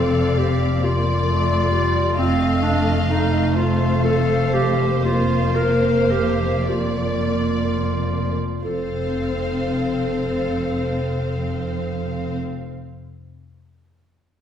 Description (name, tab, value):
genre	classical, slow romantic movement for symphony orchestra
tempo	29-45 BPM (dotted quarters)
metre	6/8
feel	rubato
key	F major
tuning	A4 = 438 Hz
part	warm studio violin section	melody	0.0-12.4 s	D5 to F5	-32 LUFS	left 2 dB	none
part	clear clarinet	second line	0.0-12.4 s	C4 to Bb4	-23 LUFS	equal	none
part	warm studio violin section	second line	0.0-12.4 s	C5 to F5	-28 LUFS	left 1 dB	none
part	dark studio viola section	accompaniment	0.0-12.4 s	G3 to C4	-25 LUFS	equal	none
part	warm studio cello section	bass	0.0-12.4 s	F2	-26 LUFS	right 1 dB	none
part	warm studio double bass section	bass	0.0-12.4 s	F1	-25 LUFS	left 1 dB	none
room	wet scoring stage reverb, RT60 1.4 s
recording	heard from further back in the room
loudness	-18 LUFS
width	side -9 dB against mid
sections	0.0-8.6 A section; 8.6-12.3 B section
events	slowing down 0.8-8.6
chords	0.0 Bb/F; 2.2 F7; 5.0 Bb/F; 8.6 F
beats	0.83 | 2.18 3.56 | 5.04 6.69 | 8.63 10.45